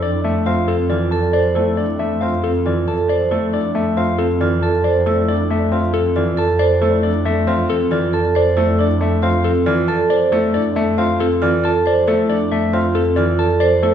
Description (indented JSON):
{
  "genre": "classical, minimalist pattern music",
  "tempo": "137 BPM",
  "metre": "4/4",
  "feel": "straight",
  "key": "F major",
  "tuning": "A4 = 440 Hz",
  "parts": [
    { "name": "mellow electric guitar", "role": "melody", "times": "0.0-13.9 s", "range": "A4 to A5", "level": "-20 LUFS", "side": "left 7 dB", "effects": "none" },
    { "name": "vibraphone with medium hard mallets", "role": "arpeggios", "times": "0.0-13.9 s", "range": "C4 to C5", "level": "-19 LUFS", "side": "right 6 dB", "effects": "none" },
    { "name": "rich studio double bass section", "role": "bass", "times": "0.0-13.9 s", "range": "F2", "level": "-22 LUFS", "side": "right 1 dB", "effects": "none" },
    { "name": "bright baby grand piano", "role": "accompaniment", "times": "0.2-13.9 s", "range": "E3 to C4", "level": "-22 LUFS", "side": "left 1 dB", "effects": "none" }
  ],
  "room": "wet recital hall reverb, RT60 1.3 s",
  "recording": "heard from further back in the room",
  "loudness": "-15 LUFS",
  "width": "side -9 dB against mid",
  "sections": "0.0-13.9 A section",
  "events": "none",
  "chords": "0.0 Fmaj7"
}